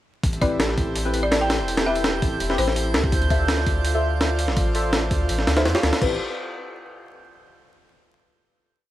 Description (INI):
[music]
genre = drum and bass, jungle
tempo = 166 BPM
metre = 4/4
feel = straight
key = A minor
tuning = A4 = 440 Hz
[part]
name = airy breathy pad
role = sustained chords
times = 0.2-6.1 s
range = C4 to F5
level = -29 LUFS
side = right 1 dB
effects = chorus
[part]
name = soft dub sub bass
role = bass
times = 0.2-6.2 s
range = E1 to F2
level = -25 LUFS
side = equal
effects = none
[part]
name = breakbeat sampler-style drum kit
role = drums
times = 0.2-6.1 s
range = crash cymbal, hi-hat, kick drum, snare drum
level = -23 LUFS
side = equal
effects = small room reverb
[part]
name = drifting glass-harmonics texture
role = texture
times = 0.7-6.0 s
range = G6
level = -33 LUFS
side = right 10 dB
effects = chorus, built-in reverb
[part]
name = folk marimba with hard mallets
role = melody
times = 0.4-2.9 s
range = C5 to G5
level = -27 LUFS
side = left 1 dB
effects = dub echo
[part]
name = deep mellow chord stab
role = stabs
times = 0.4-6.2 s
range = C4 to E5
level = -29 LUFS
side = left 3 dB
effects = chorus, phaser, vintage 12-bit sampler grit, dub echo
[sound]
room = light reverb, digital ambience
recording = vinyl crackle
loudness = -19 LUFS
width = side -14 dB against mid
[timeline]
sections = 0.2-6.0 drop; 6.0-7.5 final chord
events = drop 0.2-6.0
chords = 0.2 Am7; 3.1 Dm7; 6.0 Am7